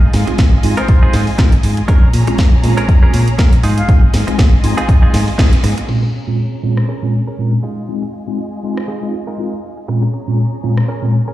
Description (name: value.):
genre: filtered disco house.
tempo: 120 BPM.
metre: 4/4.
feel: swing 56% on 16ths.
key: Bb minor.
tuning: A4 = 441 Hz.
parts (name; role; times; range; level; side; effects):
rich studio violin section; sustained chords; 0.0-11.3 s; Ab3 to Bb5; -28 LUFS; left 1 dB; sidechain pumping, low-pass filter.
direct-recorded clean electric guitar; riff; 0.0-11.3 s; Ab3 to Bb4; -25 LUFS; right 3 dB; vintage 12-bit sampler grit, sidechain pumping, low-pass filter.
modern bright fingered electric bass; bass; 0.0-5.7 s; Ab1 to Bb2; -16 LUFS; equal; tube saturation, sidechain pumping, low-pass filter.
house drum kit; drums; 0.1-10.9 s; crash cymbal, hi-hat, rim click, snare drum; -23 LUFS; left 1 dB; sidechain pumping on hats, low-pass filter on hats, low-pass filter on snare, sidechain pumping on cymbals, low-pass filter on cymbals, low-pass filter on room.
tine electric piano; accompaniment; 0.3-11.1 s; Bb2 to F4; -18 LUFS; equal; medium stereo tremolo, phaser, vintage 12-bit sampler grit, sidechain pumping, low-pass filter.
electronic kick drum; drums; 0.4-5.5 s; none; -11 LUFS; equal; none.
reedy silver concert flute; melody; 0.8-3.9 s; C5 to F5; -28 LUFS; left 1 dB; sidechain pumping, low-pass filter, tape echo.
room: light reverb, digital ambience.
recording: played on a big sound system in a bare room, large studio reverb.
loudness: -11 LUFS.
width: side -15 dB against mid.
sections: 0.0-5.9 A section; 5.9-11.3 B section.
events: band accent 5.4; filter sweep on drum 5.9-11.3; filter sweep 5.9-11.3.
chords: 0.0 Fm7/Ab; 1.9 Bbm7; 3.6 Fm7/Ab; 5.9 Bbm7; 7.6 Fm7/Ab; 9.9 Bbm7.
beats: 0.39 0.89 1.39 | 1.89 2.39 2.89 3.39 | 3.89 4.39 4.89 5.39 | 5.89 6.39 6.89 7.39 | 7.89 8.39 8.89 9.39 | 9.89 10.39 10.89.